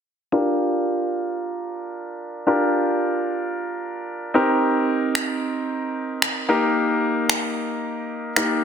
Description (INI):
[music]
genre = dance-pop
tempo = 112 BPM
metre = 4/4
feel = straight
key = unclear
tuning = A4 = 440 Hz
[part]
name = bright grand piano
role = accompaniment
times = 0.3-8.6 s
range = Bb3 to Bb4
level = -21 LUFS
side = equal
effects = low-pass filter
[part]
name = electronic finger snaps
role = drums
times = 5.2-8.5 s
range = none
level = -22 LUFS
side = equal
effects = soft clipping on snare
[sound]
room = wet plate reverb, RT60 2.0 s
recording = dense, heavily limited modern master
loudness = -20 LUFS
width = side -8 dB against mid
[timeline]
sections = 0.3-8.6 A section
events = filter sweep on grand piano 0.3-8.6; kick muted 7.8-8.6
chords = 0.3 Gm7; 4.3 Cm7; 6.5 Eb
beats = | 0.33 0.86 1.40 1.94 | 2.47 3.01 3.54 4.08 | 4.61 5.15 5.69 6.22 | 6.76 7.29 7.83 8.36